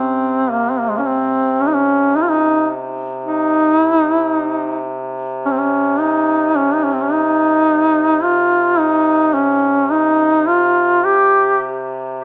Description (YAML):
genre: caucasian folk, Caucasian lament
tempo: 54 BPM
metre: 4/4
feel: rubato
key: C phrygian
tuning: A4 = 441 Hz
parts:
  - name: mellow duduk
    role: melody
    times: 0.0-12.2 s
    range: Ab3 to G4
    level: -16 LUFS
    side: equal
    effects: none
  - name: warm duduk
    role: drone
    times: 0.0-12.2 s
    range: C3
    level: -26 LUFS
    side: equal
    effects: none
room: light reverb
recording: small speaker sound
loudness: -16 LUFS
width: mono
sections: 0.0-12.2 A section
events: none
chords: none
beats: | 1.06 2.17 3.24 4.33 | 5.45 6.56 7.66 8.77 | 9.89 11.04 12.19